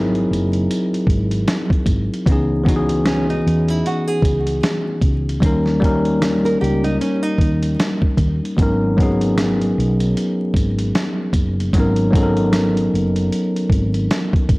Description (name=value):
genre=lo-fi hip hop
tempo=76 BPM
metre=4/4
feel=swing 58% on 16ths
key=G# minor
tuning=A4 = 437 Hz
part: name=bell-like tine electric piano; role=accompaniment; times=0.0-14.6 s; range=E3 to A#4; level=-19 LUFS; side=equal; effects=none
part: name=woody fretless electric bass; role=bass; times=0.0-14.6 s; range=F#1 to E2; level=-21 LUFS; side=equal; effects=none
part: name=dusty soul sampler-style drum kit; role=drums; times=0.1-14.6 s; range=hi-hat, kick drum, snare drum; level=-19 LUFS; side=equal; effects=none
part: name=nylon-string guitar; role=second line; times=3.1-8.4 s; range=C#4 to A#4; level=-24 LUFS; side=right 2 dB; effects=tape echo
room=little or no reverb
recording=dry, gritty hardware recording, transformer saturation, vinyl crackle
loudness=-15 LUFS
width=side -23 dB against mid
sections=0.0-14.6 A section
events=none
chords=0.0 G#7b13; 2.3 C#m9; 5.4 D#7; 8.6 G#m11